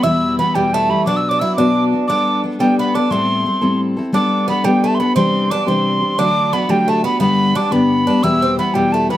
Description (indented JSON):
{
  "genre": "celtic folk, Celtic jig",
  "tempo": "117 BPM (dotted quarters)",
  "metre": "6/8",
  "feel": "straight",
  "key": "unclear",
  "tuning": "A4 = 440 Hz",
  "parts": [
    { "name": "hollow wooden whistle", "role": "melody", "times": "0.0-9.2 s", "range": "G5 to E6", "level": "-18 LUFS", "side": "equal", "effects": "plate reverb" },
    { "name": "Irish bouzouki", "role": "second line", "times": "0.0-9.2 s", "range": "G3 to E4", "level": "-21 LUFS", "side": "right 5 dB", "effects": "plate reverb" },
    { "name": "picked steel-string acoustic guitar", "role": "accompaniment", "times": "0.0-9.2 s", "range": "E2 to A4", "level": "-16 LUFS", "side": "left 2 dB", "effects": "none" }
  ],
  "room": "wet small room reverb, RT60 0.6 s",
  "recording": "none",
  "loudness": "-13 LUFS",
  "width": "side -13 dB against mid",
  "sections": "0.0-4.1 A section; 4.1-9.2 A section",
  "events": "none",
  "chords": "0.0 Em; 1.1 Bm; 2.1 Gadd9; 3.1 Am7; 4.1 Gadd9; 5.2 Cadd9; 6.2 D; 7.2 G; 8.2 Em",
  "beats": "| 0.03 0.55 | 1.06 1.57 | 2.08 2.60 | 3.11 3.62 | 4.13 4.65 | 5.16 5.67 | 6.18 6.70 | 7.21 7.72 | 8.23 8.74"
}